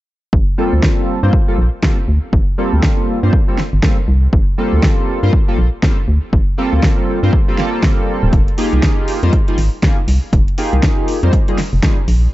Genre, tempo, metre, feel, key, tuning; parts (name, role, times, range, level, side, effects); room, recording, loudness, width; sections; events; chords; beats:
deep house; 120 BPM; 4/4; swing 61% on 16ths; G minor; A4 = 440 Hz
organ-like FM bass; bass; 0.3-12.3 s; D1 to G2; -13 LUFS; equal; sidechain pumping
electronic kick drum; drums; 0.3-11.9 s; -15 LUFS; equal
chorused polysynth; stabs; 0.6-12.0 s; G3 to C5; -19 LUFS; equal; sidechain pumping, tape echo
deep house drum kit; drums; 0.8-12.2 s; hi-hat, snare drum; -22 LUFS; equal; overdrive
little or no reverb; dark, warm production, nothing above 7.8 kHz; -12 LUFS; side -16 dB against mid
0.3-12.3 A section
0.3 Gm11; 8.3 Fm11
| 0.33 0.83 1.33 1.83 | 2.33 2.83 3.33 3.83 | 4.33 4.83 5.33 5.83 | 6.33 6.83 7.33 7.83 | 8.33 8.83 9.33 9.83 | 10.33 10.83 11.33 11.83